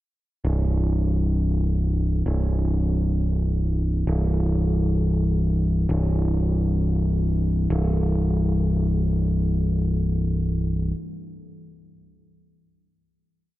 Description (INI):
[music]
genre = post-rock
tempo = free time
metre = none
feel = none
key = unclear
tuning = A4 = 439 Hz
[part]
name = growling picked electric bass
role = solo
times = 0.4-10.9 s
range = C1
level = -20 LUFS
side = equal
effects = overdrive
[sound]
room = moderate lush hall reverb, RT60 2.8 s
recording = dreamy mix soaked in reverb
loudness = -20 LUFS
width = side -16 dB against mid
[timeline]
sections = 0.4-7.7 A section; 7.7-11.3 final note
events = none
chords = none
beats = free time